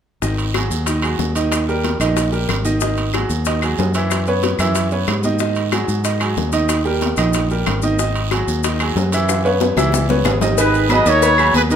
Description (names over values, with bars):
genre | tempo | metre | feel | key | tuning
latin, salsa | 185 BPM | 4/4 | straight | G# minor | A4 = 440 Hz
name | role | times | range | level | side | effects
bright upright piano | accompaniment | 0.2-11.8 s | D#3 to E5 | -20 LUFS | right 2 dB | none
fingered electric bass | bass | 0.2-11.8 s | G#1 to G#2 | -20 LUFS | equal | none
bongos and cowbell | percussion | 0.2-11.7 s | none | -26 LUFS | left 9 dB | none
congas | percussion | 0.2-11.8 s | none | -28 LUFS | left 2 dB | none
guiro | percussion | 0.2-11.8 s | none | -32 LUFS | right 8 dB | none
maracas | percussion | 0.2-11.8 s | none | -30 LUFS | left 7 dB | none
timbales and agogo bells | percussion | 0.4-11.6 s | none | -25 LUFS | right 4 dB | none
claves | percussion | 0.5-11.5 s | none | -30 LUFS | left 10 dB | none
mellow trumpet section | melody | 10.6-11.8 s | G4 to D#5 | -15 LUFS | equal | none
room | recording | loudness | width
moderate large studio reverb, RT60 0.9 s | minimal, uncompressed stereo recording | -15 LUFS | side -8 dB against mid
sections
0.2-10.6 A section; 10.6-11.8 B section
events
drum fill 9.3-10.6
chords
0.2 G#5; 1.5 D#; 2.8 G#5; 4.1 F#9sus4; 5.4 G#5; 6.7 D#; 8.0 G#5; 9.3 F#9sus4; 10.6 G#m7